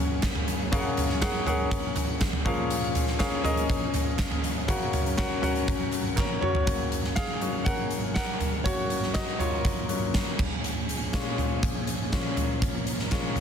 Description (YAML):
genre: piano-driven pop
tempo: 121 BPM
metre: 4/4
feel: straight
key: F# major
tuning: A4 = 444 Hz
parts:
  - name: bright concert grand piano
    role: accompaniment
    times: 0.0-13.4 s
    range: F#2 to F#5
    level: -29 LUFS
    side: left 3 dB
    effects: none
  - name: warm studio string section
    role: sustained chords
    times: 0.0-13.4 s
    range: F#2 to A#4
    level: -37 LUFS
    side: right 3 dB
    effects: none
  - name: huge arena drum kit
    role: drums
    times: 0.2-13.4 s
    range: crash cymbal, hi-hat, kick drum, snare drum, toms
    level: -27 LUFS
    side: right 1 dB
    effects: soft clipping on kick
  - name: group handclap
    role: percussion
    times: 0.2-6.3 s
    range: none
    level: -42 LUFS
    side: right 14 dB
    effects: none
room: light reverb, studio ambience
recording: dense, heavily limited modern master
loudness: -25 LUFS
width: side -7 dB against mid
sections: 0.0-6.7 A section; 6.7-13.4 B section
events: drum fill 6.2-6.7; grand piano solo 6.7-13.4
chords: 0.0 F#add9; 2.5 A#m7; 4.7 F#; 6.7 F#add9; 10.4 A#m7